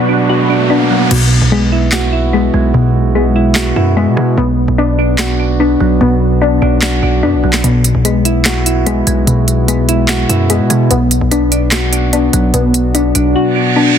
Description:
hip hop, trap; 147 BPM; 4/4; half-time; A4 = 440 Hz
soft electric-piano-like synth keys; accompaniment; 0.0-14.0 s; B2 to F#4; -14 LUFS; right 2 dB; chorus, low-pass filter
sweeping resonant pad; sustained chords; 0.0-1.1 s; D4 to F#5; -21 LUFS; right 1 dB; chorus
warbly dusty pluck; arpeggios; 0.0-14.0 s; B2 to D4; -15 LUFS; left 3 dB; chorus, low-pass filter, tape echo
riser and reverse cymbal; sound effects; 0.0-1.1, 13.5-14.0 s; -18 LUFS; right 3 dB
distorted 808-style bass; bass; 1.1-13.3 s; B1 to B2; -15 LUFS; equal; distortion
trap drum kit; drums; 1.1-13.2 s; crash cymbal, handclaps, hi-hat, snare drum; -17 LUFS; equal; overdrive
light reverb; dense, heavily limited modern master; -10 LUFS; side -8 dB against mid
0.0-1.1 A section; 1.1-14.0 B section
riser 0.0-1.1; hi-hats muted 1.1-7.6; drums muted 13.4-14.0; reverse cymbal 13.5-14.0
0.0 Bm; 1.1 Eadd9/B; 4.4 Bm; 7.6 Eadd9/B; 10.9 Bm
0.29 0.70 | 1.11 1.52 1.93 2.33 | 2.74 3.15 3.56 3.97 | 4.38 4.78 5.19 5.60 | 6.01 6.42 6.82 7.23 | 7.64 8.05 8.46 8.87 | 9.27 9.68 10.09 10.50 | 10.91 11.31 11.72 12.13 | 12.54 12.95 13.36 13.76

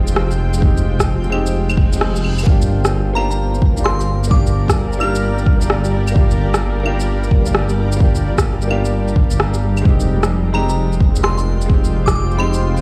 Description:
future garage; 130 BPM; 4/4; swing 62% on 16ths; G phrygian; A4 = 441 Hz
clear upright piano; accompaniment; 0.0-12.8 s; Ab3 to G4; -26 LUFS; equal; sidechain pumping, digital delay
granular cloud pad; sustained chords; 0.0-12.8 s; G3 to G5; -29 LUFS; equal; built-in reverb, sidechain pumping
dark detuned saw bass; bass; 0.0-12.8 s; F1 to G1; -20 LUFS; equal; sidechain pumping
electronic shaker, rim click and claves; drums; 0.1-12.8 s; -24 LUFS; equal; studio reverb
electronic kick drum; drums; 0.6-12.1 s; -17 LUFS; equal; studio reverb
reverse cymbal; sound effects; 1.8-2.5 s; -36 LUFS; equal
glassy synth bell; melody; 3.2-5.5, 10.5-12.8 s; Bb5 to F6; -28 LUFS; equal; chorus, digital delay
digital ambience; played on a big sound system in a bare room, large studio reverb, vinyl crackle; -16 LUFS; mono
0.0-12.8 A section
reverse cymbal 1.8-2.5
0.0 Fm9; 2.5 Gm7; 9.9 Fm9
0.16 | 0.62 1.08 1.54 2.01 | 2.47 2.93 3.39 3.85 | 4.31 4.78 5.24 5.70 | 6.16 6.62 7.08 7.54 | 8.01 8.47 8.93 9.39 | 9.85 10.31 10.78 11.24 | 11.70 12.16 12.62

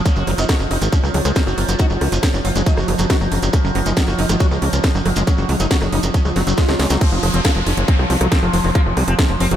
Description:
psychedelic trance; 138 BPM; 4/4; straight; A4 = 443 Hz
overtone-sweeping drone; sustained chords; 0.0-9.6 s; F3; -24 LUFS; right 1 dB; chorus, built-in reverb, phaser, sidechain pumping
sitar; melody; 0.1-9.6 s; C3 to F4; -26 LUFS; equal; phaser, vintage 12-bit sampler grit, sidechain pumping, tape echo
liquid acid bass; riff; 0.1-9.6 s; F3 to Gb4; -26 LUFS; equal; phaser, auto-pan, sidechain pumping, ping-pong delay
drum and bass drum kit; drums; 0.1-9.6 s; crash cymbal, hi-hat, rim click, snare drum; -24 LUFS; equal; overdrive, studio reverb
electronic kick drum; drums; 0.1-9.3 s; -16 LUFS; equal; overdrive, studio reverb
shekere; percussion; 0.1-7.0 s; -30 LUFS; right 4 dB
tight sequencer bass; bass; 0.2-9.6 s; F1 to Db2; -19 LUFS; equal
swell and downlifter; sound effects; 6.3-9.6 s; -26 LUFS; right 1 dB
moderate huge ambient reverb, RT60 7.8 s; dreamy mix soaked in reverb; -14 LUFS; side -10 dB against mid
0.0-7.0 A section; 7.0-9.6 B section
swell 6.3-7.0; drum fill 6.4-7.0; drop 7.0-9.6
0.1 Gb5; 7.0 F5
| 0.06 0.49 0.93 1.36 | 1.79 2.23 2.67 3.10 | 3.53 3.97 4.40 4.84 | 5.27 5.71 6.14 6.58 | 7.01 7.45 7.88 8.32 | 8.75 9.19

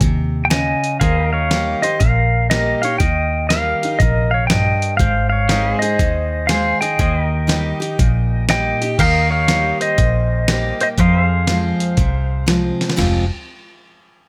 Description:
honky-tonk and classic country; 120 BPM; 4/4; swing 65% on 8ths; A4 = 440 Hz
picked steel-string acoustic guitar; accompaniment; 0.0-13.2 s; F2 to Ab4; -24 LUFS; equal
pedal steel guitar; sustained chords; 0.0-13.0 s; G4 to F5; -32 LUFS; equal
vintage muted fingered electric bass; bass; 0.0-13.3 s; F1 to F2; -22 LUFS; equal
dusty soul sampler-style drum kit; drums; 0.0-13.1 s; crash cymbal, hi-hat, kick drum, snare drum, toms; -22 LUFS; equal
pedal steel guitar; melody; 0.5-12.5 s; Bb4 to Ab5; -21 LUFS; equal
light reverb; -17 LUFS; mono
0.0-9.0 A section; 9.0-13.0 B section; 13.0-14.3 C section
drum fill 12.7
0.0 Ab; 1.0 Eb; 5.0 Ab; 7.0 Eb; 11.0 Fm
0.01 0.51 | 1.01 1.50 2.00 2.50 | 3.00 3.50 4.00 4.50 | 5.00 5.50 5.99 6.49 | 6.99 7.49 7.99 8.49 | 8.99 9.49 9.98 10.48 | 10.98 11.48 11.98 12.48 | 12.98

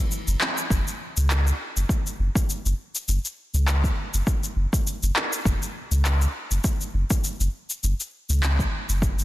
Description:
organic downtempo; 101 BPM; 4/4; swing 55% on 16ths; A4 = 440 Hz
electronic shaker and handclaps; drums; 0.1-9.2 s; -28 LUFS; left 1 dB; overdrive
warm sub bass; bass; 0.3-9.2 s; F#1 to C#2; -22 LUFS; equal; sidechain pumping
electronic kick drum; drums; 0.7-9.2 s; -24 LUFS; equal; overdrive
digital ambience; dense, heavily limited modern master; -22 LUFS; side -16 dB against mid
0.0-9.2 A section
0.11 0.70 1.29 | 1.89 2.48 3.08 3.67 | 4.27 4.86 5.45 6.05 | 6.64 7.24 7.83 8.42 | 9.02

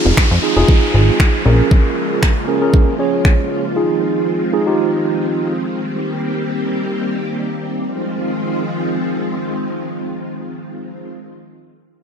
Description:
dance-pop; 117 BPM; 4/4; straight; F minor; A4 = 439 Hz
mellow tine electric piano; accompaniment; 0.0-5.5 s; Db4 to Db5; -18 LUFS; right 2 dB; medium stereo tremolo, sidechain pumping
string machine, violas; sustained chords; 0.0-11.1 s; Db3 to G4; -20 LUFS; equal; ensemble chorus, sidechain pumping
downlifter; sound effects; 0.0-3.8 s; -23 LUFS; equal
plucky analog bass; bass; 0.1-1.6 s; F1 to F2; -12 LUFS; equal; sidechain pumping
pop drum kit; drums; 0.2-3.4 s; finger snaps, kick drum; -12 LUFS; equal; overdrive
light reverb, digital ambience; -14 LUFS; side -7 dB against mid
0.0-7.9 A section; 7.9-12.0 B section
0.0 Fm7; 1.5 Bbm7; 3.8 Fm7; 5.8 Cm7; 7.9 Fm7
0.17 0.69 1.20 | 1.71 2.23 2.74 3.25 | 3.76 4.28 4.79 5.30 | 5.82 6.33 6.84 7.35 | 7.87 8.38 8.89 9.40 | 9.92 10.43 10.94

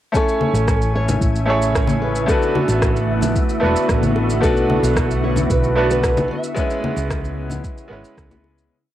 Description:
sunset chillout; 112 BPM; 4/4; straight; A major; A4 = 440 Hz
bright concert grand piano; accompaniment; 0.1-8.7 s; G#3 to G#5; -22 LUFS; moving between left 3 dB and right 4 dB; auto-pan, cassette tape, tape echo, plate reverb
shimmering ambient pad; sustained chords; 0.8-8.7 s; C#3 to G#5; -26 LUFS; right 1 dB; chorus, built-in reverb, cassette tape
electronic kick drum; drums; 0.1-8.3 s; -21 LUFS; equal; overdrive, cassette tape
electronic shaker and rim click; drums; 0.1-8.7 s; -27 LUFS; equal; overdrive, cassette tape
wind-like tuned noise texture; texture; 0.9-8.7 s; E4 to E5; -30 LUFS; left 1 dB; built-in reverb, cassette tape
nylon-string guitar; melody; 0.2-8.1 s; F#4 to E5; -24 LUFS; left 1 dB; plate reverb
congas and bongos; percussion; 0.4-8.6 s; -24 LUFS; left 2 dB
hollow-body short-scale fingered electric bass; bass; 0.5-8.7 s; E1 to C#2; -21 LUFS; equal
light reverb; home recording on cassette; -16 LUFS; side -12 dB against mid
0.1-8.7 groove
fade-out 5.9-8.7
0.1 Amaj7; 2.3 D6/A; 4.4 Bm7; 6.3 C#m7
| 0.14 0.68 1.22 1.75 | 2.29 2.82 3.36 3.89 | 4.43 4.96 5.50 6.04 | 6.57 7.11 7.64 8.18

